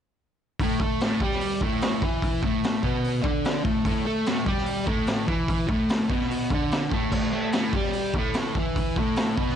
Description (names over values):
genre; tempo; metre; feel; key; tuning
garage rock duo or trio; 147 BPM; 4/4; straight; unclear; A4 = 440 Hz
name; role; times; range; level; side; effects
fuzz guitar; riff; 0.6-9.6 s; A2 to A4; -25 LUFS; equal; distortion
raw garage drum kit; drums; 0.6-9.5 s; crash cymbal, hi-hat, kick drum, snare drum; -26 LUFS; equal; vintage 12-bit sampler grit
room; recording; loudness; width
light reverb, studio reverb; none; -23 LUFS; side -9 dB against mid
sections
0.6-9.6 A section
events
none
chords
0.6 A5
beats
| 0.60 1.01 1.42 1.82 | 2.23 2.64 3.04 3.45 | 3.86 4.27 4.67 5.08 | 5.49 5.90 6.30 6.71 | 7.12 7.53 7.94 8.35 | 8.76 9.17